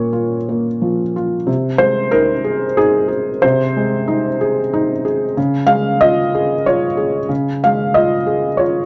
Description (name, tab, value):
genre	neoclassical minimalist piano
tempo	92 BPM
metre	3/4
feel	rubato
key	unclear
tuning	A4 = 441 Hz
part	felt-muted upright piano	solo	0.0-8.9 s	Bb2 to F5	-16 LUFS	equal	none
room	light reverb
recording	dark, warm production, nothing above 7.9 kHz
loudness	-16 LUFS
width	mono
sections	0.0-8.9 A section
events	none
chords	0.0 Bbm; 1.5 Ab/C; 5.4 Db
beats	0.15 0.82 | 1.48 2.12 2.77 | 3.42 4.07 4.72 | 5.36 6.00 6.65 | 7.29 7.95 8.60